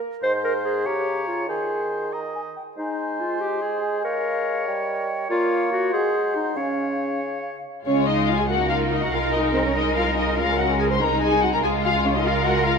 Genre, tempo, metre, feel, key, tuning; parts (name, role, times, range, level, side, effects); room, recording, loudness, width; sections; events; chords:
quick classical-period movement for symphony orchestra; 95 BPM (dotted quarters); 6/8; straight; Ab major, Db major from 5.3 s; A4 = 440 Hz
clear oboe; second line; 0.2-7.6 s; C5 to Eb5; -30 LUFS; equal
mellow hollow concert flute; second line; 0.2-7.6 s; Eb5 to Bb5; -31 LUFS; left 1 dB
warm clarinet; second line; 0.2-7.2 s; Db4 to C5; -25 LUFS; left 1 dB
mellow bassoon; accompaniment; 0.2-7.6 s; Ab2 to Bb3; -29 LUFS; right 2 dB
muted studio violin section; melody; 7.9-12.8 s; C5 to C6; -24 LUFS; left 6 dB
muted studio violin section; second line; 7.9-12.8 s; Ab3 to F4; -25 LUFS; left 5 dB
muted chamber viola section; accompaniment; 7.9-12.8 s; C4 to C5; -25 LUFS; right 1 dB
muted studio double bass section; bass; 7.9-12.8 s; C2 to Db2; -26 LUFS; right 4 dB
muted studio cello section; bass; 8.5-12.8 s; Eb4 to Bb4; -26 LUFS; right 2 dB
moderate concert hall reverb, RT60 2.1 s; -20 LUFS; side -5 dB against mid
0.0-7.9 A section; 7.9-12.8 B section
0.2 Ab; 0.9 Bbm/Db; 1.5 Ab/Eb; 2.8 Ab; 4.7 Eb7/G; 5.3 Bbm; 5.9 Ab7; 6.6 Db; 8.5 Eb5/Db; 9.1 Ab/C; 10.4 Db5; 11.0 Ab/C; 11.6 Db